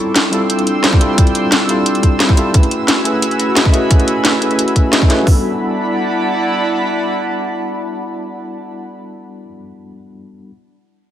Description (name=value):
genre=liquid drum and bass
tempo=176 BPM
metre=4/4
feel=straight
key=unclear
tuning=A4 = 440 Hz
part: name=tine electric piano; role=accompaniment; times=0.0-10.5 s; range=G3 to D#5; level=-19 LUFS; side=equal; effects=medium tremolo, low-pass filter, tape echo
part: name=airy breathy pad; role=sustained chords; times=0.0-8.8 s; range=D4 to E6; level=-19 LUFS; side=equal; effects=chorus, vintage 12-bit sampler grit, sidechain pumping
part: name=drum and bass drum kit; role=drums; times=0.2-5.2 s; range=hi-hat, snare drum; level=-16 LUFS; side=equal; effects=none
part: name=garage drum kit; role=drums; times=0.9-5.4 s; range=hi-hat, kick drum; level=-12 LUFS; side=equal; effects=none
room=light reverb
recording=none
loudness=-12 LUFS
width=side -11 dB against mid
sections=0.0-5.3 A section; 5.3-8.0 B section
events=filter sweep on tine electric piano 0.0-5.3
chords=0.0 Dm11; 2.5 F#m11; 5.3 Em11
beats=0.16 0.50 0.84 | 1.18 1.52 1.86 2.20 | 2.54 2.88 3.23 3.56 | 3.91 4.25 4.59 4.93 | 5.27 5.61 5.95 6.29 | 6.63 6.97 7.32 7.66